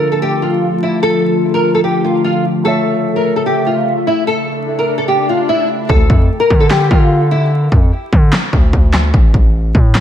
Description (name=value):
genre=hip hop, trap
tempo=148 BPM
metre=4/4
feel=half-time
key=unclear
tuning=A4 = 440 Hz
part: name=nylon-string guitar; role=melody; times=0.0-7.5 s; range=E4 to Bb4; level=-15 LUFS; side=equal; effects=ensemble chorus, analog delay
part: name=dark grand piano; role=accompaniment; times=0.0-5.9 s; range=D3 to E5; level=-22 LUFS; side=right 3 dB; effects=none
part: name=warbly tape-like pad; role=sustained chords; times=0.0-5.9 s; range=C#3 to E5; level=-18 LUFS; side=left 3 dB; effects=chorus, built-in reverb
part: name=swell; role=sound effects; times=4.5-5.9 s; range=none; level=-24 LUFS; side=left 3 dB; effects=none
part: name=distorted 808-style bass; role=bass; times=5.9-10.0 s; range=A1 to D3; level=-13 LUFS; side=equal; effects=distortion
part: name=pop drum kit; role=drums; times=5.9-10.0 s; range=handclaps, kick drum, snare drum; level=-11 LUFS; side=equal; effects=vintage 12-bit sampler grit
room=moderate plate reverb, RT60 1.8 s, digital ambience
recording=dreamy mix soaked in reverb, vinyl crackle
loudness=-11 LUFS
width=side -10 dB against mid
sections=0.0-5.9 A section; 5.9-10.0 B section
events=swell 4.5-5.9; hi-hats muted 5.9-10.0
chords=0.0 Dm; 2.7 A; 5.9 N.C.